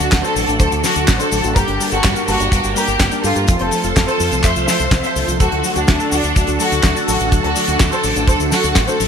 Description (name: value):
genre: italo disco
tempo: 125 BPM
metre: 4/4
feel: straight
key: unclear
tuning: A4 = 440 Hz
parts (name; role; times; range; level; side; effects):
- warm studio violin section; melody; 0.0-9.1 s; D4 to E5; -18 LUFS; equal; ping-pong delay
- phased string machine; sustained chords; 0.0-9.1 s; D3 to C5; -23 LUFS; equal; ensemble chorus, phaser
- soft round pluck; arpeggios; 0.0-9.1 s; F3 to Bb4; -26 LUFS; left 3 dB; chorus, digital delay
- mellow synth brass; stabs; 0.0-9.1 s; G2 to Bb4; -26 LUFS; right 3 dB; chorus
- fingered electric bass with an envelope filter; bass; 0.0-9.1 s; F1 to G2; -22 LUFS; equal; none
- damped 70s drum kit; drums; 0.0-9.1 s; cabasa, handclaps, hi-hat, snare drum; -20 LUFS; left 2 dB; none
- kick drum; drums; 0.1-8.9 s; none; -16 LUFS; right 1 dB; none
room: moderate lush hall reverb, RT60 2.0 s, small room ambience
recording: bright 1980s-style digital production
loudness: -13 LUFS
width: side -7 dB against mid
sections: 0.0-9.1 A section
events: none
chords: 0.0 D; 1.6 Gm; 3.5 F; 5.4 D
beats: 0.12 0.60 1.08 | 1.56 2.04 2.52 3.00 | 3.48 3.96 4.44 4.92 | 5.40 5.88 6.36 6.84 | 7.32 7.80 8.28 8.76